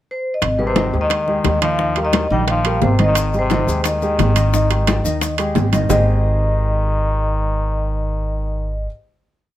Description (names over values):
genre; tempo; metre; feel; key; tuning
Afro-Cuban jazz; 176 BPM; 4/4; straight; Ab major; A4 = 435 Hz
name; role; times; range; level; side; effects
vibraphone with medium hard mallets; melody; 0.1-8.9 s; Cb5 to G5; -22 LUFS; equal; none
upright bass; bass; 0.4-8.9 s; Ab1 to Eb2; -19 LUFS; equal; none
bongos; percussion; 0.4-6.0 s; none; -24 LUFS; left 8 dB; none
congas; percussion; 0.4-6.0 s; none; -24 LUFS; left 1 dB; none
timbales; percussion; 0.4-6.0 s; none; -23 LUFS; right 8 dB; none
trombone with metal mute; second line; 0.6-8.9 s; Cb3 to G3; -25 LUFS; left 4 dB; none
warm upright piano; accompaniment; 0.6-8.9 s; Eb3 to Eb5; -23 LUFS; equal; none
maracas; percussion; 3.2-6.0 s; none; -31 LUFS; left 5 dB; none
room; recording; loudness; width
light reverb; close, detailed microphones; -15 LUFS; side -13 dB against mid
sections
0.0-0.4 pickup bar; 0.4-5.9 A section; 5.9-8.6 final chord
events
none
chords
0.4 Abmaj7; 1.8 Ebadd9; 3.2 Abmaj7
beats
0.08 | 0.42 0.76 1.11 1.45 | 1.79 2.13 2.48 2.82 | 3.16 3.50 3.85 4.19 | 4.53 4.87 5.21 5.55 | 5.89 6.24 6.58 6.92 | 7.25 7.59 7.93 8.28